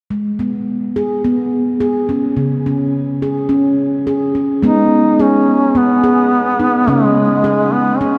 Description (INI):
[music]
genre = world meditative, meditative tuned percussion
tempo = 106 BPM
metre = 4/4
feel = swing 54% on 16ths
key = G# minor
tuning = A4 = 440 Hz
[part]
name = handpan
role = arpeggios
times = 0.1-8.2 s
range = C#3 to G#4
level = -17 LUFS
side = equal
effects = none
[part]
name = warm duduk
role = melody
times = 4.6-8.2 s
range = G#3 to D#4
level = -15 LUFS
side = equal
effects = tape echo
[sound]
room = wet cathedral reverb, RT60 5.9 s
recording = in a vast, echoing space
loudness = -15 LUFS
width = mono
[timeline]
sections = 0.1-4.6 A section; 4.6-8.2 B section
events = none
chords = 0.1 G#m; 2.4 C#5; 4.6 G#m; 6.9 C#5